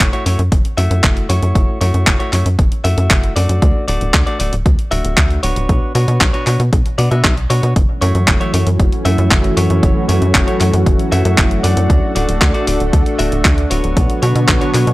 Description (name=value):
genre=italo disco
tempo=116 BPM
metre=4/4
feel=straight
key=F# minor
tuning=A4 = 440 Hz
part: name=direct-recorded clean electric guitar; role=stabs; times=0.0-14.9 s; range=A3 to E5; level=-22 LUFS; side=left 1 dB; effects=none
part: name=tight sequencer bass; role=bass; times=0.0-14.9 s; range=D1 to B2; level=-15 LUFS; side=equal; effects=none
part: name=clean 12-bit digital drum machine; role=drums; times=0.0-14.9 s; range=handclaps, hi-hat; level=-18 LUFS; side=equal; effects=studio reverb
part: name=electronic kick drum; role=drums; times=0.0-14.6 s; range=none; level=-15 LUFS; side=equal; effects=studio reverb
part: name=lush unison pad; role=sustained chords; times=7.8-14.9 s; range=D3 to C#5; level=-18 LUFS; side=equal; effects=chorus
room=little or no reverb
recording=dry, gritty hardware recording, transformer saturation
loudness=-12 LUFS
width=side -18 dB against mid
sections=0.0-14.9 A section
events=none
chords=0.0 F#m7; 3.6 D; 5.7 Bmadd9; 7.8 F#m7; 11.9 D; 14.0 Bmadd9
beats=0.00 0.52 1.04 | 1.55 2.07 2.59 3.11 | 3.62 4.14 4.66 5.17 | 5.69 6.21 6.73 7.24 | 7.76 8.28 8.79 9.31 | 9.83 10.35 10.86 11.38 | 11.90 12.42 12.93 13.45 | 13.97 14.48